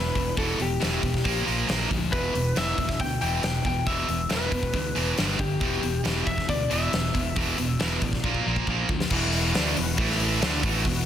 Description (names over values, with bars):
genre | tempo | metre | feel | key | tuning
hard rock | 137 BPM | 4/4 | straight | E minor | A4 = 440 Hz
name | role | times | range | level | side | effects
lightly driven lead guitar | melody | 0.0-8.6 s | G4 to G5 | -30 LUFS | left 3 dB | slapback echo
scooped high-gain guitar | riff | 0.0-11.0 s | E2 to D4 | -30 LUFS | left 6 dB | distortion
sludgy distorted guitar | riff | 0.0-11.0 s | E2 to D4 | -30 LUFS | right 9 dB | overdrive
fingered electric bass | bass | 0.0-11.1 s | E1 to D2 | -30 LUFS | equal | none
big rock drum kit | drums | 0.2-11.0 s | crash cymbal, hi-hat, kick drum, snare drum | -28 LUFS | equal | none
overdriven tonewheel organ | sustained chords | 9.1-11.1 s | E3 to B4 | -36 LUFS | equal | chorus vibrato, lush chorus
room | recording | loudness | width
light reverb | dense, heavily limited modern master | -23 LUFS | side -10 dB against mid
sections
0.0-9.1 A section; 9.1-11.1 B section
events
drum fill 8.2-9.1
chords
0.0 Em; 1.3 A#5; 2.1 E5; 5.2 G5; 5.6 Em; 8.2 A#5; 9.1 E5; 10.0 A5; 10.4 E5